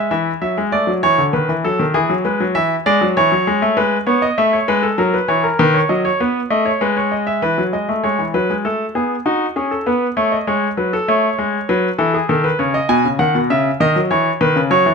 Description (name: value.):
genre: classical, baroque-style two-part invention for grand piano.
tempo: 99 BPM.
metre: 3/4.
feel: straight.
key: A major.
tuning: A4 = 438 Hz.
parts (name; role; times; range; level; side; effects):
bright grand piano; solo; 0.0-14.9 s; B2 to G#5; -14 LUFS; equal; none.
room: moderate stone room reverb, RT60 1.4 s.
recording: close, detailed microphones.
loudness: -14 LUFS.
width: side -5 dB against mid.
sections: 0.1-7.4 A section; 7.4-14.9 B section.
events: none.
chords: 0.1 A/E; 1.3 B7/D#; 2.0 E7; 3.2 A/E; 3.8 E/G#; 5.0 F#7; 5.6 B7/D#; 6.8 E/G#; 7.4 E; 8.7 Asus2; 9.3 D#dim; 10.5 G#m; 11.1 A; 12.3 B9; 12.9 G#m/B; 14.1 C#m/E.